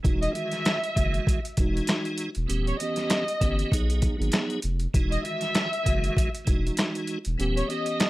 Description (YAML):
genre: hip hop, boom-bap hip-hop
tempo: 98 BPM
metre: 4/4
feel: swing 57% on 16ths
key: unclear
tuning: A4 = 436 Hz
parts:
  - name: tonewheel organ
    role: accompaniment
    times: 0.0-8.1 s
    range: D#2 to G#4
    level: -30 LUFS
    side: right 1 dB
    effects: chorus vibrato, slow rotary speaker, cassette tape, high-pass filter, low-pass filter, plate reverb
  - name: saturated sub bass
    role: bass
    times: 0.0-7.6 s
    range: D#1 to B1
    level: -27 LUFS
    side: equal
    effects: none
  - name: boom bap sampler-style drum kit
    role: drums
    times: 0.0-8.1 s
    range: hi-hat, kick drum, rim click, snare drum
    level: -26 LUFS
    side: equal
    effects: none
  - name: warm symphonic violin section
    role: melody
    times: 0.2-8.1 s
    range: C#5 to E5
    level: -30 LUFS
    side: equal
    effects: high-pass filter, low-pass filter
room: light reverb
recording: none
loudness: -24 LUFS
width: side -18 dB against mid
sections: 0.0-8.1 A section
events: none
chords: 0.0 Emaj9; 2.5 D#7b9b13; 3.7 B6; 4.9 Emaj9; 7.4 D#7b9b13